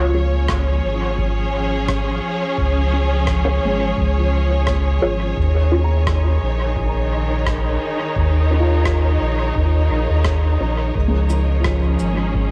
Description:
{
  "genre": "ambient dub",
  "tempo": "86 BPM",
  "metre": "4/4",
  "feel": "swing 55% on 16ths",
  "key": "unclear",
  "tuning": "A4 = 440 Hz",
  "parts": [
    { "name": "warm symphonic string section", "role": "sustained chords", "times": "0.0-12.5 s", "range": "Eb3 to Db5", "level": "-25 LUFS", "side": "equal", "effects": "cassette tape" },
    { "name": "felt-muted upright piano", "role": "arpeggios", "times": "0.0-12.5 s", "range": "F3 to Bb5", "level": "-30 LUFS", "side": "equal", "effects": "cassette tape, tape echo" },
    { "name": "soft dub sub bass", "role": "bass", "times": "0.0-12.5 s", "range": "Ab1 to Eb2", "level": "-20 LUFS", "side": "equal", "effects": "tube saturation" },
    { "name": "drifting glass-harmonics texture", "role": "texture", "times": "0.6-12.5 s", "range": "Ab4", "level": "-37 LUFS", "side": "equal", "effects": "chorus, built-in reverb, cassette tape" },
    { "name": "filtered dub chord stab", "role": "stabs", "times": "0.1-11.5 s", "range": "F4 to Db5", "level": "-29 LUFS", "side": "equal", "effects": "phaser, cassette tape, dub echo" },
    { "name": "electronic kick drum", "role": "drums", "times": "0.5-12.5 s", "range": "none", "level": "-29 LUFS", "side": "equal", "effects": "cassette tape" },
    { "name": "rim click and cabasa", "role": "drums", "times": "0.5-12.1 s", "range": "none", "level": "-32 LUFS", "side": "equal", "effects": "cassette tape, dub echo" }
  ],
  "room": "light reverb",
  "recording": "home recording on cassette",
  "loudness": "-19 LUFS",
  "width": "mono",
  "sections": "0.0-12.5 A section",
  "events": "filter sweep on synth stab 0.0-12.5",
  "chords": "0.0 Db; 5.4 Ebm7; 11.0 Db"
}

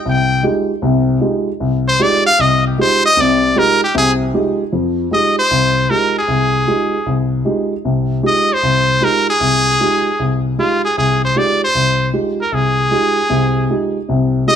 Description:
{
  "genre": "jazz",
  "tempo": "154 BPM",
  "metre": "4/4",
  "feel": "swing 67% on 8ths",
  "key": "F dorian",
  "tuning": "A4 = 439 Hz",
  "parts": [
    { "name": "brilliant trumpet", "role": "melody", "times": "0.0-14.6 s", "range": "F4 to G5", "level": "-14 LUFS", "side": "equal", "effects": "plate reverb" },
    { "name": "dark baby grand piano", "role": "accompaniment", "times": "0.1-14.6 s", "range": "C2 to G4", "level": "-16 LUFS", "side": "equal", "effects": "none" }
  ],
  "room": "moderate studio reverb, RT60 0.6 s",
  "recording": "none",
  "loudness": "-13 LUFS",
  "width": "side -8 dB against mid",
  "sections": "0.0-4.7 A section; 4.7-14.6 B section",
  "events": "trumpet solo 0.0-4.7",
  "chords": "0.0 Fm9"
}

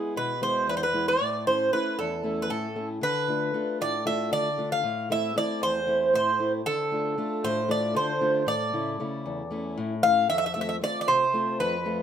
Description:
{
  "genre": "greek folk, Greek bouzouki band",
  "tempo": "231 BPM (eighths)",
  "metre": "7/8",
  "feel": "straight",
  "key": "D dorian sharp4",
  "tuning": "A4 = 440 Hz",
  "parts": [
    { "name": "Greek bouzouki", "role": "melody", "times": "0.0-12.0 s", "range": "G#4 to F5", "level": "-25 LUFS", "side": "right 1 dB", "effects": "plate reverb" },
    { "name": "fingerpicked steel-string acoustic guitar", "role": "accompaniment", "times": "0.0-12.0 s", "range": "E2 to F4", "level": "-30 LUFS", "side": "left 2 dB", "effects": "none" }
  ],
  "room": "moderate studio reverb, RT60 0.5 s",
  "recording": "none",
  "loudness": "-24 LUFS",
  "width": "side -9 dB against mid",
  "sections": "0.0-10.3 A section; 10.3-12.0 B section",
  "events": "none",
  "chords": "0.0 E; 1.2 A; 3.0 Dm; 4.8 Am; 6.7 Dm; 8.5 A; 10.3 F"
}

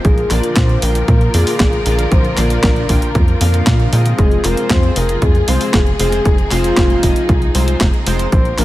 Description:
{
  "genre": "italo disco",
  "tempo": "116 BPM",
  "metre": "4/4",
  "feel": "straight",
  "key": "F dorian",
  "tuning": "A4 = 440 Hz",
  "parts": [
    { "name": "soft octave-layered synth lead", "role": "melody", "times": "0.0-8.6 s", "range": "F4 to C5", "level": "-20 LUFS", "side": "left 1 dB", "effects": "chorus, tremolo, tape echo" },
    { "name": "warm symphonic string section", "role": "sustained chords", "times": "0.0-8.6 s", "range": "C3 to Bb4", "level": "-23 LUFS", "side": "equal", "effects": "none" },
    { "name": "tight sequencer bass", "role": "bass", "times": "0.0-8.6 s", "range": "F1 to Bb2", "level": "-16 LUFS", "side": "equal", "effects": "none" },
    { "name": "clean 12-bit digital drum machine", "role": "drums", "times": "0.0-8.6 s", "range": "handclaps, hi-hat, snare drum", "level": "-20 LUFS", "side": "equal", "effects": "overdrive" },
    { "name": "electronic kick drum", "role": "drums", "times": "0.0-8.4 s", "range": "none", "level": "-14 LUFS", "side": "equal", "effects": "overdrive" },
    { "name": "chorused polysynth", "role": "stabs", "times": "0.3-8.6 s", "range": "Bb2 to G5", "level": "-22 LUFS", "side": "left 1 dB", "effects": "none" }
  ],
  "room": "digital ambience",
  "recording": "none",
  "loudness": "-11 LUFS",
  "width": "side -16 dB against mid",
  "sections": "0.0-8.6 A section",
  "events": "none",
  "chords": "0.0 Bb; 4.2 Fm"
}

